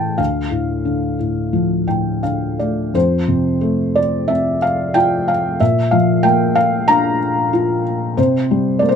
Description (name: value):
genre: classical, lyrical solo piano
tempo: 91 BPM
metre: 4/4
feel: rubato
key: F major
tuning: A4 = 440 Hz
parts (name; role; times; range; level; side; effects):
- felt-muted upright piano; solo; 0.0-9.0 s; D2 to Bb5; -14 LUFS; left 1 dB; none
room: little or no reverb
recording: close, detailed microphones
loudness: -15 LUFS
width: side -7 dB against mid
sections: 0.0-2.9 A section; 2.9-9.0 B section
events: felt piano fill 1.5-2.9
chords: 0.2 Dm; 2.9 F; 5.6 Bb; 8.2 C7(no3)